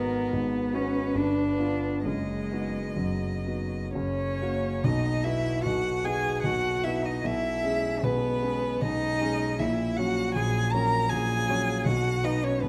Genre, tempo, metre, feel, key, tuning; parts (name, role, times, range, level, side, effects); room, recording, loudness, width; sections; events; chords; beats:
classical, slow romantic movement for piano trio; 60-80 BPM; 3/4; rubato; B major; A4 = 439 Hz
dark violin; melody; 0.0-12.7 s; A#4 to A#5; -33 LUFS; equal
warm cello; second line; 0.0-12.7 s; F#3 to A#4; -33 LUFS; equal
dark concert grand piano; accompaniment; 0.0-12.7 s; F#1 to C#5; -31 LUFS; equal
moderate recital hall reverb, RT60 1.4 s; close, detailed microphones; -27 LUFS; mono
0.0-4.8 A section; 4.8-12.7 B section
0.0 G#m7; 1.2 G7; 2.1 B/F#; 3.9 F#; 4.8 B; 7.2 C#m7/B; 9.6 F#/A#; 11.9 B
0.34 1.16 | 2.06 2.98 3.94 | 4.84 5.65 6.43 | 7.23 8.02 8.80 | 9.58 10.34 11.11 | 11.86 12.62